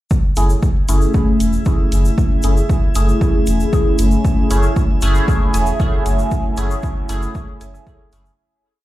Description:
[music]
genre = dub techno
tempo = 116 BPM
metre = 4/4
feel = straight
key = F# minor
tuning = A4 = 443 Hz
[part]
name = electronic kick drum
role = drums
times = 0.1-8.0 s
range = none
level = -17 LUFS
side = equal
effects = overdrive, small room ambience
[part]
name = tube shaker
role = percussion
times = 0.1-8.4 s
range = none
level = -33 LUFS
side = left 3 dB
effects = none
[part]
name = drifting glass-harmonics texture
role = texture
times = 0.6-8.4 s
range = E4 to E5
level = -31 LUFS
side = right 2 dB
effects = chorus, built-in reverb, sidechain pumping
[part]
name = resonant sweep polysynth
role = stabs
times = 0.4-8.2 s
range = A3 to G#4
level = -20 LUFS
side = equal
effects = chorus, phaser, dub echo
[part]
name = soft dub sub bass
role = bass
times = 0.4-8.3 s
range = E1 to F#1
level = -16 LUFS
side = equal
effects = sidechain pumping
[part]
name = electronic hi-hat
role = drums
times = 0.4-8.2 s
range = none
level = -30 LUFS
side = right 1 dB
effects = overdrive, small room ambience
[part]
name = deep dark ambient pad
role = sustained chords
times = 5.0-8.3 s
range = C#5 to F#5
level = -32 LUFS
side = right 4 dB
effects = chorus, built-in reverb, sidechain pumping
[part]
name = filtered dub chord stab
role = riff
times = 4.5-7.8 s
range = A4 to G#5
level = -34 LUFS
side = right 4 dB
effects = phaser, sidechain pumping, dub echo
[sound]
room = little or no reverb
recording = played on a big sound system in a bare room, large studio reverb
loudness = -14 LUFS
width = side -15 dB against mid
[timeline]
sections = 0.1-8.4 groove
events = fade-out 5.6-8.4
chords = 0.1 F#m7

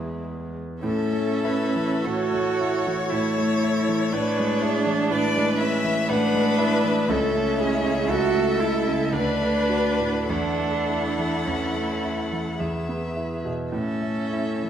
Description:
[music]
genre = classical, slow romantic movement for piano quintet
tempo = 47-62 BPM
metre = 3/4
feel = rubato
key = A major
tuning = A4 = 440 Hz
[part]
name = rich violin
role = second line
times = 0.0-14.7 s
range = E4 to F#5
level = -33 LUFS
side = left 3 dB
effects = none
[part]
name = clear concert grand piano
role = accompaniment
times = 0.0-14.7 s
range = C#2 to G#4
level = -25 LUFS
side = equal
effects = none
[part]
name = rich viola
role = accompaniment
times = 0.0-14.7 s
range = G#3 to B4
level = -31 LUFS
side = right 2 dB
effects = none
[part]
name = clear violin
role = melody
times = 0.8-13.2 s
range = E4 to E5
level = -29 LUFS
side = left 6 dB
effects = none
[part]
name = rich cello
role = second line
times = 0.8-14.7 s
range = C#4 to F#4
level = -26 LUFS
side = right 4 dB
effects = none
[sound]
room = wet scoring stage reverb, RT60 1.8 s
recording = none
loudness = -21 LUFS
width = side -9 dB against mid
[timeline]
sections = 0.8-14.7 A section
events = none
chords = 0.0 E; 0.8 A; 4.1 E7/A; 7.1 A/C#; 9.1 Bm7/D; 10.3 A/E; 12.6 E; 13.7 A

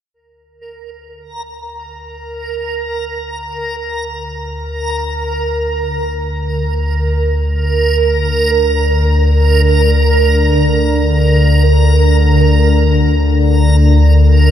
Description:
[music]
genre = dark ambient drone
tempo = free time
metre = none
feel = none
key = unclear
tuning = A4 = 440 Hz
[part]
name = deep rumbling drone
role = drone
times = 1.8-14.5 s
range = D2 to D3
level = -12 LUFS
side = left 1 dB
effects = built-in reverb, phaser
[part]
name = backwards swelling texture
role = texture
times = 0.6-14.5 s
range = Bb4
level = -17 LUFS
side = right 3 dB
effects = built-in reverb
[sound]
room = wet huge ambient reverb, RT60 7.6 s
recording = none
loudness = -11 LUFS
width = side -10 dB against mid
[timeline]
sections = 0.1-14.5 A section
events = fade-in on synth drone 0.1-14.5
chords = 0.1 Bb

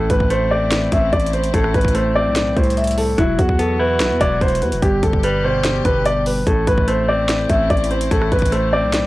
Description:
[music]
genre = hip hop, trap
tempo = 146 BPM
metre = 4/4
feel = half-time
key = unclear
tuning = A4 = 440 Hz
[part]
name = dark concert grand piano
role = melody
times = 0.0-9.1 s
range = E4 to E5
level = -18 LUFS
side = equal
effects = low-pass filter
[part]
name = clean electric guitar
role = accompaniment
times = 0.0-9.1 s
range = G2 to E4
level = -23 LUFS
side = left 1 dB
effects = low-pass filter
[part]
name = warm chamber string section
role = sustained chords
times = 0.0-9.1 s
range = B2 to G4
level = -30 LUFS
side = left 2 dB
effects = none
[part]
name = growling 808-style bass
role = bass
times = 0.0-9.1 s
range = E1 to E2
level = -22 LUFS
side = equal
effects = none
[part]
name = trap drum kit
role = drums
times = 0.1-9.0 s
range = hi-hat, kick drum, rim click, snare drum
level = -20 LUFS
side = equal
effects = none
[sound]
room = little or no reverb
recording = dry, gritty hardware recording, transformer saturation, cassette tape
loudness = -15 LUFS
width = side -18 dB against mid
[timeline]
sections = 0.0-3.2 A section; 3.2-9.1 A section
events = none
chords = 0.0 Am; 3.2 Esus2; 4.8 G; 6.5 Am

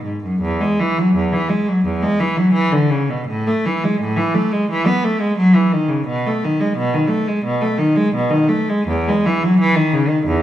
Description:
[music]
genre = classical, baroque-style suite movement for unaccompanied cello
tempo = 85 BPM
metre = 4/4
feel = uneven beats, rubato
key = E major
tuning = A4 = 440 Hz
[part]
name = clear cello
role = solo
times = 0.0-10.4 s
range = E2 to B3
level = -15 LUFS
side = equal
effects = none
[sound]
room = wet stone room reverb, RT60 1.4 s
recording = heard from further back in the room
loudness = -15 LUFS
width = side -12 dB against mid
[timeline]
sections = 0.4-10.4 A section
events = none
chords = none

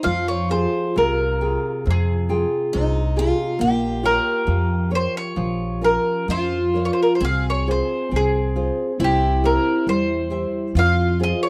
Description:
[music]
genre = fado-style ballad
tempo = 68 BPM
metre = 2/4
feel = rubato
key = F minor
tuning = A4 = 442 Hz
[part]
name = mandolin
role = melody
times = 0.0-11.5 s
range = G4 to F5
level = -25 LUFS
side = equal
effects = none
[part]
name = picked twelve-string acoustic guitar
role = second line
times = 0.0-11.5 s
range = Eb4 to Ab4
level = -28 LUFS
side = equal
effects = tape echo
[part]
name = nylon-string guitar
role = accompaniment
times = 0.0-11.5 s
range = C3 to G5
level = -27 LUFS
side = equal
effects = none
[part]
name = upright bass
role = bass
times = 0.1-11.3 s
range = Bb1 to F2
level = -25 LUFS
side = equal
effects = none
[sound]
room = light reverb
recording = dry, close 1970s-style studio recording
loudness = -21 LUFS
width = mono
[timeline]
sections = 0.1-11.5 A section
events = none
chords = 0.1 Fmadd9; 3.6 Bbm; 7.2 Fm/C; 9.0 C; 10.8 Fm

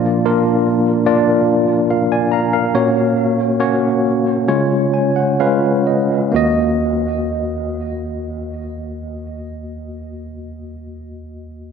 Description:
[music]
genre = pop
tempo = 62-75 BPM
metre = 4/4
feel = straight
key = Eb minor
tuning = A4 = 439 Hz
[part]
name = bright tine electric piano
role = solo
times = 0.0-11.7 s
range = Eb2 to Bb5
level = -15 LUFS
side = equal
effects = medium stereo tremolo, diffuse ambient delay
[sound]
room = wet lush hall reverb, RT60 1.8 s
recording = dreamy mix soaked in reverb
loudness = -14 LUFS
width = side -6 dB against mid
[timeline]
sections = 0.0-6.3 A section; 6.3-10.2 B section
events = slowing down 0.0-6.3; tine electric piano fill 4.5-6.3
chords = 0.0 Bb; 2.7 Gb/Bb; 4.5 Db; 6.3 Ebm

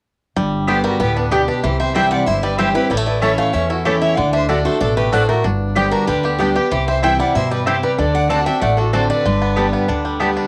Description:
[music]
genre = bluegrass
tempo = 189 BPM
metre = 4/4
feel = straight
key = G major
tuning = A4 = 440 Hz
[part]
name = bluegrass banjo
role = melody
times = 0.4-10.5 s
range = D3 to G4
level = -25 LUFS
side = equal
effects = plate reverb
[part]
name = picked steel-string acoustic guitar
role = accompaniment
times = 0.4-10.5 s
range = E2 to G4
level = -23 LUFS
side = equal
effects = none
[part]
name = upright bass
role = bass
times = 0.4-10.4 s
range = G1 to G2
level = -26 LUFS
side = equal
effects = none
[part]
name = picked steel-string acoustic guitar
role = melody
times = 0.7-9.8 s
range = D4 to A5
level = -23 LUFS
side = equal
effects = plate reverb
[part]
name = clear fiddle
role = second line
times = 0.7-9.8 s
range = B3 to F#5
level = -27 LUFS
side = equal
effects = plate reverb
[part]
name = mandolin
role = stabs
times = 0.7-10.3 s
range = A3 to A5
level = -23 LUFS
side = equal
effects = plate reverb
[sound]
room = wet small room reverb, RT60 0.5 s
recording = home recording on cassette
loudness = -17 LUFS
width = mono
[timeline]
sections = 0.4-10.5 A section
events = none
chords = 0.4 G; 1.6 C; 2.9 A; 4.2 D; 5.4 G; 6.7 C; 8.0 D7; 9.3 Gadd9

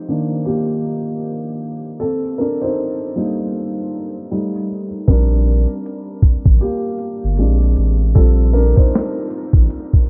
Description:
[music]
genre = lo-fi hip hop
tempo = 78 BPM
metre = 4/4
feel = swing 60% on 16ths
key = C dorian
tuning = A4 = 440 Hz
[part]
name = felt-muted upright piano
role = accompaniment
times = 0.0-10.1 s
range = Eb3 to C5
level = -23 LUFS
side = equal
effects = cassette tape, low-pass filter
[part]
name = saturated sub bass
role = bass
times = 5.1-9.7 s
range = G1 to Bb1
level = -16 LUFS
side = equal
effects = none
[part]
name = boom bap sampler-style drum kit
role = drums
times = 5.1-10.1 s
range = hi-hat, kick drum, snare drum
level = -15 LUFS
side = equal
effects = none
[sound]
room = light reverb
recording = cassette tape, low-pass filter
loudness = -17 LUFS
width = mono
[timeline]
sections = 0.0-10.1 A section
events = felt piano solo 0.0-10.1; filter sweep 0.0-10.1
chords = 0.0 Cm7; 2.0 Cm13; 4.3 Am7b5/G; 5.1 Bb6; 7.4 Bb9; 8.2 Eb69

